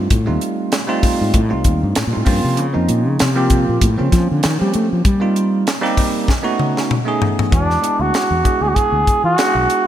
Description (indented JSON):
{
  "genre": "electric jazz fusion",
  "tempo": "97 BPM",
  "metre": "4/4",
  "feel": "swing 54% on 16ths",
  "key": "unclear",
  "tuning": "A4 = 441 Hz",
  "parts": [
    { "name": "bell-like tine electric piano", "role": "accompaniment", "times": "0.0-9.9 s", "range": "F3 to Ab4", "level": "-20 LUFS", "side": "right 2 dB", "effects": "wide subtle chorus" },
    { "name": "fretless electric bass", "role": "bass", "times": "0.0-9.7 s", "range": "B1 to A3", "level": "-18 LUFS", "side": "left 1 dB", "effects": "none" },
    { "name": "crisp fusion drum kit", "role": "drums", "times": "0.1-9.9 s", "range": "hi-hat, kick drum, snare drum, toms", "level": "-18 LUFS", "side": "left 1 dB", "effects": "none" },
    { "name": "growling trumpet", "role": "melody", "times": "7.5-9.9 s", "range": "D4 to G#4", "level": "-16 LUFS", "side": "right 1 dB", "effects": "none" }
  ],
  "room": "moderate lush hall reverb, RT60 2.8 s",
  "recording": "bright 1980s-style digital production",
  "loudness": "-14 LUFS",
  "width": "side -11 dB against mid",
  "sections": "0.0-7.5 A section; 7.5-9.9 B section",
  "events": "fretless electric bass solo 0.0-7.5; drum fill 6.3-7.5",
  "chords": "0.0 F9; 2.3 Bbmadd9; 5.1 Eb6; 6.3 B9; 7.5 E9"
}